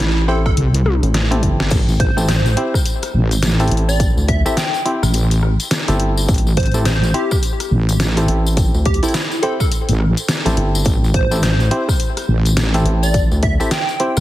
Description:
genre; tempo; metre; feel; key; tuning
glitch hop; 105 BPM; 4/4; swing 60% on 16ths; A minor; A4 = 438 Hz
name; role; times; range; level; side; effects
plucky unison lead; melody; 0.0-14.2 s; E4 to G5; -24 LUFS; equal; phaser, ping-pong delay
rubbery square bass; bass; 0.0-13.6 s; G1 to D2; -17 LUFS; equal; none
dubstep drum kit; drums; 0.0-14.2 s; crash cymbal, hi-hat, rim click, snare drum, toms; -22 LUFS; left 1 dB; none
clav; stabs; 0.3-14.2 s; C4 to C5; -24 LUFS; equal; sidechain pumping, ping-pong delay
electronic kick drum; drums; 0.5-13.6 s; none; -17 LUFS; equal; none
wobble bass; bass; 0.6-14.2 s; A1 to C2; -15 LUFS; equal; chorus
tambourine; percussion; 1.7-14.2 s; none; -28 LUFS; left 4 dB; none
room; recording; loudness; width
little or no reverb; heavily compressed radio sound, multiband compression; -14 LUFS; side -15 dB against mid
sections
0.0-14.2 A section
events
drum fill 0.9-1.7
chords
0.0 Am7

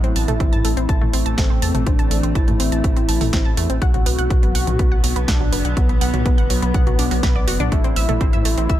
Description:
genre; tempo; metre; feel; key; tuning
melodic techno; 123 BPM; 4/4; straight; A dorian; A4 = 439 Hz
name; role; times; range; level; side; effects
wide unison lead; melody; 0.0-8.8 s; B3 to F#4; -25 LUFS; equal; cassette tape, sidechain pumping, ping-pong delay
evolving wavetable pad; sustained chords; 0.0-8.8 s; D3 to C4; -29 LUFS; left 2 dB; chorus, built-in reverb, sidechain pumping
wide unison pluck; arpeggios; 0.0-8.7 s; F#3 to A6; -26 LUFS; moving between left 5 dB and right 4 dB; auto-pan, sidechain pumping, tape echo
round analog bass; bass; 0.0-8.8 s; F#1 to A2; -22 LUFS; equal; sidechain pumping
techno drum kit; drums; 0.0-8.8 s; hi-hat, snare drum, toms; -26 LUFS; right 2 dB; none
electronic kick drum; drums; 0.4-8.8 s; none; -18 LUFS; equal; none
room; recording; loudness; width
digital ambience; none; -16 LUFS; side -13 dB against mid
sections
0.0-8.8 A section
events
none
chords
0.0 Am; 3.8 Bm; 7.7 Am

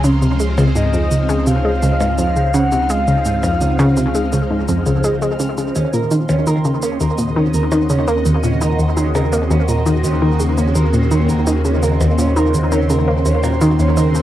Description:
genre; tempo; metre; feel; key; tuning
ambient, sequencer-driven space music; 84 BPM; 4/4; straight; Eb dorian; A4 = 440 Hz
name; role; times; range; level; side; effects
phased string machine; sustained chords; 0.0-14.2 s; Db3 to Eb5; -22 LUFS; equal; ensemble chorus, phaser, cassette tape
analog pluck; riff; 0.0-14.2 s; Db2 to Bb3; -16 LUFS; equal; chorus, cassette tape, tape echo
warm sub bass; bass; 0.0-14.2 s; Db2 to Eb2; -20 LUFS; equal; none
shaker and percussion blips; percussion; 0.0-14.2 s; none; -30 LUFS; right 1 dB; cassette tape, tape echo
bubbling stepped-filter texture; texture; 0.0-14.2 s; F3 to F6; -29 LUFS; right 1 dB; chorus, built-in reverb, cassette tape
soft octave-layered synth lead; melody; 0.8-5.0 s; Eb5 to Gb5; -22 LUFS; left 1 dB; chorus, tape echo
electric guitar at the edge of break-up; arpeggios; 5.8-14.1 s; Db4 to Bb4; -24 LUFS; right 6 dB; auto-pan, cassette tape, tape echo
room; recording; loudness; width
wet booth ambience, RT60 0.2 s; home recording on cassette; -14 LUFS; side -13 dB against mid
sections
0.0-14.2 A section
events
none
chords
0.0 Dbmaj7; 5.8 Ebm7

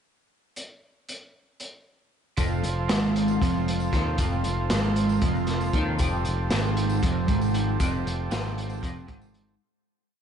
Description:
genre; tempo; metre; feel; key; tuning
psychedelic rock; 232 BPM (eighths); 7/8; straight; F mixolydian; A4 = 440 Hz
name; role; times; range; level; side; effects
crunchy breakbeat drum kit; drums; 0.6-9.5 s; hi-hat, kick drum, snare drum; -29 LUFS; left 1 dB; none
overdriven combo organ; sustained chords; 2.4-9.6 s; F3 to A4; -31 LUFS; right 4 dB; none
electric guitar at the edge of break-up; riff; 2.4-9.6 s; F2 to Eb3; -27 LUFS; right 1 dB; flanger, double-tracked left and right
overdriven picked electric bass; bass; 2.4-9.6 s; F1 to Eb2; -29 LUFS; left 1 dB; none
tambourine; percussion; 2.4-9.5 s; none; -47 LUFS; left 7 dB; none
room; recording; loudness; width
moderate cathedral reverb, RT60 4.7 s; dreamy mix soaked in reverb, nothing above 11.0 kHz; -23 LUFS; side -8 dB against mid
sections
0.6-2.4 pickup bar; 2.4-9.6 riff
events
fade-out 7.8-9.6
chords
0.6 N.C.; 2.4 F

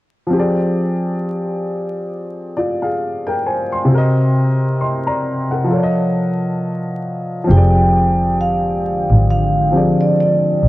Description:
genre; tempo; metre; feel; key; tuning
lo-fi hip hop; 67 BPM; 4/4; swing 57% on 16ths; F dorian; A4 = 445 Hz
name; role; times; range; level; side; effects
dark upright piano; accompaniment; 0.3-10.7 s; C3 to C6; -16 LUFS; left 1 dB; none
vibraphone with soft mallets; melody; 7.5-10.7 s; D5 to G5; -18 LUFS; right 1 dB; none
deep dark ambient pad; sustained chords; 8.4-10.7 s; D3 to G5; -21 LUFS; left 1 dB; chorus, built-in reverb
warm double bass; bass; 7.5-10.7 s; F1 to Bb1; -15 LUFS; equal; none
room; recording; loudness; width
moderate studio reverb, RT60 0.6 s; dark, warm production, vinyl crackle; -14 LUFS; side -17 dB against mid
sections
0.3-7.5 A section; 7.5-10.7 B section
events
none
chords
0.3 Fm69; 3.9 Cm7b5; 5.7 F7b13; 7.5 Fm69

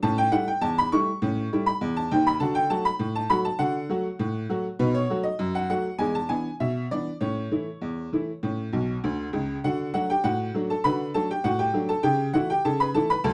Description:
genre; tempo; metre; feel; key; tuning
ragtime piano; 100 BPM; 2/4; straight; D major; A4 = 440 Hz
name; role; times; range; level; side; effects
tack piano; solo; 0.0-13.3 s; B1 to C#6; -26 LUFS; equal; none
room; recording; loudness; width
moderate small room reverb, RT60 0.5 s; none; -26 LUFS; mono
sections
0.0-9.6 A section; 9.6-13.3 B section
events
honky-tonk piano fill 8.7-9.6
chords
0.0 A7; 2.4 D; 4.8 B7; 6.0 E7; 7.2 A; 9.6 D; 12.0 A7/C#

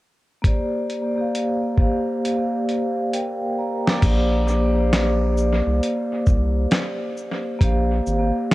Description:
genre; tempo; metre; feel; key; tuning
lo-fi hip hop; 67 BPM; 4/4; swing 64% on 16ths; Bb major; A4 = 441 Hz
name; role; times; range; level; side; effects
vibraphone with medium mallets; accompaniment; 0.4-8.5 s; Bb3 to D6; -22 LUFS; equal; cassette tape, low-pass filter, analog delay
dusty soul sampler-style drum kit; drums; 0.4-8.5 s; crash cymbal, hi-hat, kick drum, shaker, snare drum; -21 LUFS; equal; analog delay
round analog bass; bass; 4.0-8.3 s; Ab1 to C2; -21 LUFS; equal; none
room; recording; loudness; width
digital ambience; echo-heavy mix, cassette tape; -19 LUFS; side -18 dB against mid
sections
0.4-4.0 A section; 4.0-8.5 B section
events
drum fill 2.2-4.0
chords
0.4 Bb69

